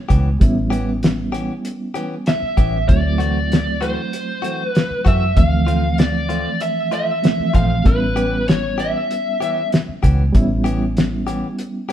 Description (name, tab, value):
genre	straight-eighth soul blues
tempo	97 BPM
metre	4/4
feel	straight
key	A mixolydian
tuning	A4 = 438 Hz
part	bright reed electric piano	accompaniment	0.0-11.9 s	E3 to E4	-23 LUFS	right 2 dB	fast tremolo
part	direct-recorded clean electric guitar	stabs	0.1-11.9 s	E3 to G4	-28 LUFS	left 3 dB	none
part	vintage muted fingered electric bass	bass	0.1-11.4 s	A1 to F#2	-20 LUFS	equal	none
part	cloth-damped thuddy drum kit	drums	0.1-11.9 s	hi-hat, kick drum, snare drum	-17 LUFS	equal	none
part	lead guitar through a small cranked amp	melody	2.3-9.7 s	B4 to F5	-22 LUFS	left 1 dB	overdrive
room	moderate stone room reverb, RT60 1.1 s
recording	band playing live in one room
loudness	-16 LUFS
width	side -11 dB against mid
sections	0.0-11.9 A section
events	none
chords	0.0 A9; 2.9 D9; 5.4 Dm7; 7.9 A9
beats	| 0.41 1.03 1.65 2.27 | 2.89 3.51 4.13 4.75 | 5.37 5.99 6.61 7.23 | 7.86 8.48 9.10 9.72 | 10.34 10.96 11.59